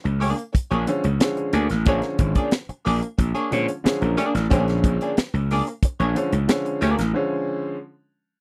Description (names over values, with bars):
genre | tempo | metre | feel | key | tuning
funk | 91 BPM | 4/4 | straight | Bb mixolydian | A4 = 438 Hz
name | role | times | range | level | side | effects
archtop guitar, miked and amplified | accompaniment | 0.0-7.0 s | Bb3 to D5 | -28 LUFS | equal | wah
gritty slap bass | bass | 0.0-7.1 s | Ab1 to Bb2 | -24 LUFS | equal | overdrive
tight funk drum kit | drums | 0.1-7.1 s | hi-hat, kick drum, snare drum | -23 LUFS | equal | none
clear upright piano | stabs | 0.9-7.7 s | D3 to D5 | -27 LUFS | equal | none
room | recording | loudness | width
little or no reverb | dry, close 1970s-style studio recording | -22 LUFS | mono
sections
0.0-8.4 A section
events
upright piano fill 3.5-4.5; break 7.1-8.4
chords
0.0 Bb7#9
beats
0.55 1.21 | 1.87 2.53 3.19 3.85 | 4.51 5.17 5.83 6.49 | 7.15